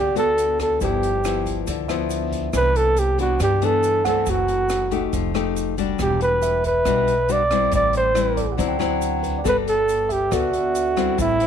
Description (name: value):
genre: bossa nova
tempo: 139 BPM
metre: 4/4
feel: straight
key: G major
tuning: A4 = 439 Hz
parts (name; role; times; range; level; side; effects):
- breathy flugelhorn; melody; 0.0-11.5 s; E4 to D5; -20 LUFS; right 2 dB; none
- nylon-string guitar; accompaniment; 0.0-11.5 s; F#2 to A4; -25 LUFS; left 12 dB; none
- tine electric piano; accompaniment; 0.0-11.2 s; B4 to G5; -30 LUFS; right 13 dB; phaser
- upright bass; bass; 0.0-11.5 s; E1 to G2; -26 LUFS; right 2 dB; none
- open jazz drum kit; drums; 0.2-11.5 s; hi-hat, kick drum, rim click; -32 LUFS; right 1 dB; none
- egg shaker; percussion; 0.2-11.5 s; none; -40 LUFS; right 20 dB; none
room: light reverb, studio reverb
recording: 1960s-style stereo with parts hard left and right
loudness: -18 LUFS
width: side -8 dB against mid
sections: 0.0-11.5 A section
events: none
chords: 0.0 Gmaj9; 0.8 G6; 2.5 Cmaj9; 4.3 F#m7b5; 5.1 F9; 6.0 Em9; 7.7 Am7; 8.6 D9; 9.4 Gmaj9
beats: 0.38 | 0.81 1.24 1.67 2.10 | 2.54 2.97 3.40 3.83 | 4.26 4.70 5.13 5.56 | 5.99 6.42 6.86 7.29 | 7.72 8.15 8.59 9.02 | 9.45 9.88 10.31 10.75 | 11.18